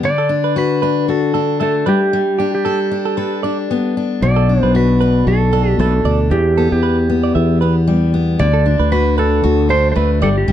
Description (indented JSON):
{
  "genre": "pop",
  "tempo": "115 BPM",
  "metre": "4/4",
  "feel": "swing 55% on 16ths",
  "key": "unclear",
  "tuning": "A4 = 440 Hz",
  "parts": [
    { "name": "picked steel-string acoustic guitar", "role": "accompaniment", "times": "0.0-10.5 s", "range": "E2 to A4", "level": "-17 LUFS", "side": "left 5 dB", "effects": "none" },
    { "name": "clean lap steel guitar", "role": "melody", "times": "0.1-10.5 s", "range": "G4 to D5", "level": "-18 LUFS", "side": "right 2 dB", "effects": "plate reverb" },
    { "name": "direct-recorded clean electric guitar", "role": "arpeggios", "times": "0.2-10.4 s", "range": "G4 to E5", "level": "-23 LUFS", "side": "right 9 dB", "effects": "none" },
    { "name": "sustaining fretless electric bass", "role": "bass", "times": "4.2-10.5 s", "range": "G1 to E2", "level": "-15 LUFS", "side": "right 1 dB", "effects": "none" }
  ],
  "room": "light reverb",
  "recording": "dark, warm production",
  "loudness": "-13 LUFS",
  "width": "side -10 dB against mid",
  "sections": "0.0-10.5 A section",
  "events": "none",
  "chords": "0.0 D; 1.9 Gadd9; 4.2 Bm7; 6.3 Em; 8.4 D"
}